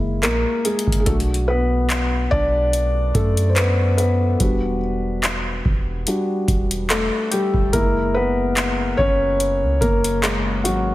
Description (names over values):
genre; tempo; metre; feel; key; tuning
contemporary R&B; 72 BPM; 4/4; swing 54% on 16ths; unclear; A4 = 440 Hz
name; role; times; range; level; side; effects
felt-muted upright piano; accompaniment; 0.0-10.9 s; F#3 to D5; -20 LUFS; left 1 dB; none
soft 808-style bass; bass; 0.0-10.9 s; E1 to F#2; -22 LUFS; right 1 dB; none
booming analog drum machine; drums; 0.2-10.9 s; handclaps, hi-hat, kick drum; -22 LUFS; equal; none
room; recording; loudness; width
light reverb, digital ambience; heavily compressed radio sound, faint mains hum; -17 LUFS; side -16 dB against mid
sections
0.0-10.9 A section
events
felt piano solo 0.0-10.9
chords
0.0 F#7; 1.1 Bm7; 4.4 Em7; 7.7 F#7